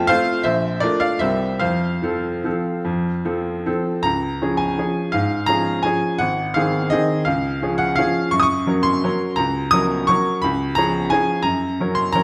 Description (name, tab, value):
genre	classical, piano waltz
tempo	141-182 BPM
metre	3/4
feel	rubato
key	F major, Db major from 4.1 s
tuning	A4 = 438 Hz
part	clear upright piano	solo	0.0-12.2 s	Ab1 to Eb6	-20 LUFS	equal	none
room	wet recital hall reverb, RT60 1.5 s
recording	none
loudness	-20 LUFS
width	mono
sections	0.0-4.1 A section; 4.1-12.2 B section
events	none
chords	0.5 Bbmaj7; 1.2 C7; 1.6 F; 4.1 Db; 6.2 Ab7; 7.3 Db; 8.3 Gb; 10.4 Db7; 11.5 Gb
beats	0.10 | 0.46 0.83 1.22 | 1.61 2.03 2.45 | 2.86 3.26 3.67 | 4.07 4.43 4.79 | 5.14 5.48 5.84 | 6.20 6.56 6.92 | 7.27 7.62 7.98 | 8.33 8.68 9.04 | 9.38 9.73 10.08 | 10.43 10.77 11.12 | 11.45 11.79 12.15